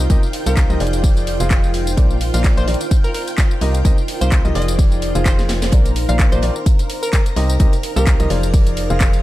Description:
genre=piano house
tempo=128 BPM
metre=4/4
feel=swing 55% on 16ths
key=F dorian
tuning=A4 = 439 Hz
part: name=string machine, violins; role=sustained chords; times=0.0-9.2 s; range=F4 to Bb5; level=-29 LUFS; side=right 1 dB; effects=ensemble chorus, sidechain pumping
part: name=clear upright piano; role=riff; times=0.0-9.2 s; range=Bb2 to F5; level=-24 LUFS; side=left 1 dB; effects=sidechain pumping
part: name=organ-like FM bass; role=bass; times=0.0-9.2 s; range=F1 to C2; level=-19 LUFS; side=equal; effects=sidechain pumping
part: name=house drum kit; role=drums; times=0.0-9.2 s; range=handclaps, hi-hat, snare drum, tambourine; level=-26 LUFS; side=left 1 dB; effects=studio reverb
part: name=deep dark ambient pad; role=texture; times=0.0-9.2 s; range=Eb4 to G5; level=-28 LUFS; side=equal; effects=chorus, built-in reverb, sidechain pumping
part: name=electronic kick drum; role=drums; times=0.1-9.1 s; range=none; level=-14 LUFS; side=equal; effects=studio reverb
part: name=open jazz drum kit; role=drums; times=0.1-9.1 s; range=hi-hat, snare drum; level=-34 LUFS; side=right 2 dB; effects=none
part: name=hollow square pluck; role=melody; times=0.5-8.3 s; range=Bb4 to F5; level=-28 LUFS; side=equal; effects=chorus, tape echo
room=small room ambience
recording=dark, warm production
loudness=-14 LUFS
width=side -16 dB against mid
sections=0.0-5.7 A section; 5.7-9.2 B section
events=drum fill 5.4-5.7; band accent 5.6; drop 5.7-9.2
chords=0.0 Cm7; 0.8 Fm7; 2.0 Bbadd9; 2.9 Ebmaj7; 3.6 Cm7; 4.6 Fm7; 5.7 Bbadd9; 6.7 Ebmaj7; 7.4 Cm7; 8.3 Fm7

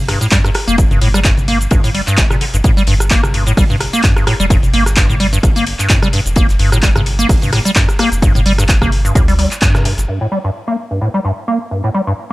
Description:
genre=acid house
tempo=129 BPM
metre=4/4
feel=swing 55% on 16ths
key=G minor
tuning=A4 = 439 Hz
part: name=round analog bass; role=bass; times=0.0-10.1 s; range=F1 to G2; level=-17 LUFS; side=equal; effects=tube saturation, sidechain pumping
part: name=acid bass, square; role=riff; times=0.1-12.3 s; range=G2 to Bb3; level=-16 LUFS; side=equal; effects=tube saturation, wide subtle chorus, sidechain pumping, tape echo
part: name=booming analog drum machine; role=drums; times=0.1-10.1 s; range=cabasa, handclaps, hi-hat, rim click, toms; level=-18 LUFS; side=equal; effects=low-pass filter on hats, low-pass filter on perc, low-pass filter on snare, low-pass filter on toms
part: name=damped 70s drum kit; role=drums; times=0.1-10.1 s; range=hi-hat, ride cymbal, snare drum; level=-30 LUFS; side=left 3 dB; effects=none
part: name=electronic kick drum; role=drums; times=0.3-9.7 s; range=none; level=-14 LUFS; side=equal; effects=none
room=light reverb, small room ambience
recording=none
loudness=-11 LUFS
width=side -19 dB against mid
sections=0.0-10.1 A section; 10.1-12.3 B section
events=drop 0.0-10.1; band accent 9.6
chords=none

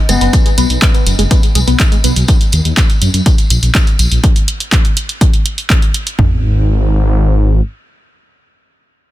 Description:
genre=melodic techno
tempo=123 BPM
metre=4/4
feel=straight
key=unclear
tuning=A4 = 441 Hz
part: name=tight sequenced synth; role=arpeggios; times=0.1-2.1 s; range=G#3 to B4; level=-20 LUFS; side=left 1 dB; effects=chorus, sidechain pumping, ping-pong delay
part: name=swelling detuned saw bass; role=bass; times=0.1-7.6 s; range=F#1 to F#2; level=-12 LUFS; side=equal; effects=sidechain pumping
part: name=punchy analog drum machine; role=drums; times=0.1-6.2 s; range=handclaps, hi-hat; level=-18 LUFS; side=right 1 dB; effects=none
part: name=tambourine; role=percussion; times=0.1-4.2 s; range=none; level=-23 LUFS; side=left 3 dB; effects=none
part: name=punchy analog drum machine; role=drums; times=0.3-6.3 s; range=kick drum, toms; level=-11 LUFS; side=equal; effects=none
room=digital ambience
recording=dense, heavily limited modern master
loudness=-9 LUFS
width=side -15 dB against mid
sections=0.0-6.2 A section; 6.2-9.1 B section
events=drop 0.0-6.2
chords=0.0 B5; 2.3 D#m; 6.2 N.C.

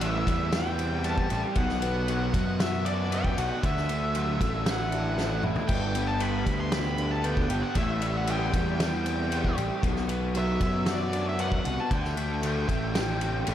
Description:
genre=rock, shoegaze and dream pop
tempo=116 BPM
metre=4/4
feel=straight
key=unclear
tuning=A4 = 440 Hz
part: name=octave-fuzz lead guitar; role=melody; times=0.0-13.4 s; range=D5 to C6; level=-33 LUFS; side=equal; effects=distortion, diffuse ambient delay
part: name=overdriven electric guitar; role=riff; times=0.0-13.5 s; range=G2 to G4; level=-31 LUFS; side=equal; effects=analog chorus
part: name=fuzz picked electric bass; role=bass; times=0.0-13.5 s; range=G1 to F#2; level=-30 LUFS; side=equal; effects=overdrive
part: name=loose indie drum kit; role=drums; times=0.0-13.5 s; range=crash cymbal, kick drum, ride cymbal, snare drum, toms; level=-31 LUFS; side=equal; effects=none
room=moderate lush hall reverb, RT60 1.7 s, small room ambience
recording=dreamy mix soaked in reverb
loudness=-25 LUFS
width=side -11 dB against mid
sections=0.0-13.5 A section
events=drum fill 5.2-5.7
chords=0.0 Am7; 1.6 Bm; 3.6 Dadd9; 5.7 G; 7.8 Am7; 9.8 Bm; 11.9 D7sus4

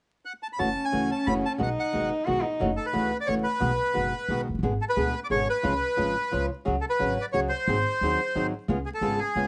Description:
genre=tango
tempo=178 BPM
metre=3/4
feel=rubato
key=F# harmonic minor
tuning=A4 = 438 Hz
part: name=bandoneon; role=melody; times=0.3-9.5 s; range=G#4 to B5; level=-29 LUFS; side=equal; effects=none
part: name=warm cello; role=second line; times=0.6-2.6 s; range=C#4 to F#4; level=-31 LUFS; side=equal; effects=none
part: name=nylon-string guitar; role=accompaniment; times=0.6-9.5 s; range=B2 to G#4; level=-31 LUFS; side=equal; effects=none
part: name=upright bass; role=bass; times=0.6-9.5 s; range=E#1 to D#2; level=-34 LUFS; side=equal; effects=none
room=light reverb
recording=vinyl crackle, nothing above 10.8 kHz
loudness=-27 LUFS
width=mono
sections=0.6-2.6 A section; 2.6-9.5 B section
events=none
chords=0.0 N.C.; 0.6 F#m7; 1.6 B6; 2.6 F#m7; 3.6 B6; 4.6 G#dim; 5.6 C#; 6.7 C#sus4; 7.7 G#7; 8.7 C#7

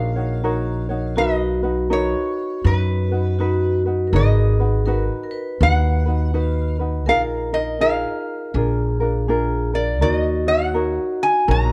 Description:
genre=Hawaiian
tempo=81 BPM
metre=4/4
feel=swing 62% on 8ths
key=Eb minor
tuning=A4 = 440 Hz
part: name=lap resonator guitar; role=melody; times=0.0-11.7 s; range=B4 to Bb5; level=-25 LUFS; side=equal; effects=plate reverb
part: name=vibraphone with hard mallets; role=second line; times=0.0-11.7 s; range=F#4 to Cb5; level=-28 LUFS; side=equal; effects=none
part: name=ukulele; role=accompaniment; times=0.0-11.7 s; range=D4 to Db5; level=-27 LUFS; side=equal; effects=none
part: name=upright bass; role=bass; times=0.0-11.7 s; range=Ab1 to F#2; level=-23 LUFS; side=equal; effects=none
room=moderate small room ambience, RT60 0.5 s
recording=dark, warm production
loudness=-20 LUFS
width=mono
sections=0.0-11.7 A section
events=none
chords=0.0 Ebm7; 1.2 Bmaj7; 4.1 Abm9; 7.1 Bb7sus4; 8.5 Bb7; 10.0 Ebm7

